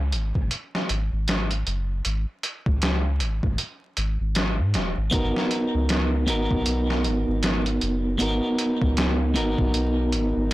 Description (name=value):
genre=trip hop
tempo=78 BPM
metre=4/4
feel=swing 60% on 16ths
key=G# minor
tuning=A4 = 441 Hz
part: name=soft dub sub bass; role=bass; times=0.0-10.5 s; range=D#1 to G#2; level=-25 LUFS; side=equal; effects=tube saturation
part: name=trip hop sampler-style drum kit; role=drums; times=0.1-10.5 s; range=hi-hat, kick drum, snare drum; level=-26 LUFS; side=equal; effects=overdrive
part: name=clean electric guitar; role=accompaniment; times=5.1-10.5 s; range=B3 to A#4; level=-24 LUFS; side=right 1 dB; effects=harmonic tremolo, tape echo
room=little or no reverb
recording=blown-out, overdriven recording, vinyl crackle, overdrive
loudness=-22 LUFS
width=side -17 dB against mid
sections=0.0-10.5 A section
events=none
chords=0.0 N.C.; 5.1 G#m9